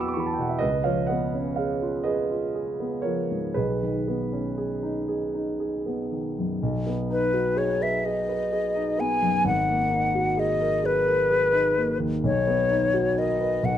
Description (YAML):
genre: classical, impressionist duo for flute and grand piano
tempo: 38-44 BPM (dotted quarters)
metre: 6/8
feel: rubato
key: B major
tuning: A4 = 439 Hz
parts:
  - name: warm concert grand piano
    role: accompaniment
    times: 0.0-13.8 s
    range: G#1 to E6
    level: -25 LUFS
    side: right 1 dB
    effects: none
  - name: hollow concert flute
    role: melody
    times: 7.1-13.8 s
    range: B4 to G#5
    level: -23 LUFS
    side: left 2 dB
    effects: none
room: moderate large studio reverb, RT60 1.0 s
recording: dark, warm production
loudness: -22 LUFS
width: side -10 dB against mid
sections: 0.0-6.6 A section; 6.6-13.8 A section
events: none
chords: 0.0 Em9; 0.6 C#9; 3.6 B69; 6.6 B6; 9.5 G#m9; 12.2 Bmaj7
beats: | 0.62 2.06 | 3.56 5.10 | 6.63 8.06 | 9.46 10.84 | 12.23 13.63